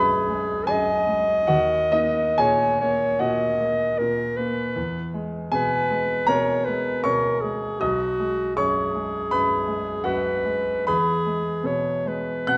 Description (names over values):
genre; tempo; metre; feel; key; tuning
classical, impressionist duo for clarinet and grand piano; 63-83 BPM; 4/4; rubato; B major; A4 = 445 Hz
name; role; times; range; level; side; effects
warm clarinet; melody; 0.0-12.6 s; F#4 to D#5; -26 LUFS; equal; none
warm concert grand piano; accompaniment; 0.0-12.6 s; B1 to F#6; -26 LUFS; equal; none
room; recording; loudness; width
wet recital hall reverb, RT60 1.2 s; none; -23 LUFS; mono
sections
0.0-12.6 A section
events
none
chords
0.0 B6; 1.5 D#m; 4.8 E; 7.8 B6; 10.9 E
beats
0.68 | 1.48 2.38 3.20 3.99 | 4.76 5.52 6.29 7.04 | 7.81 8.57 9.31 10.05 | 10.87 11.65 12.48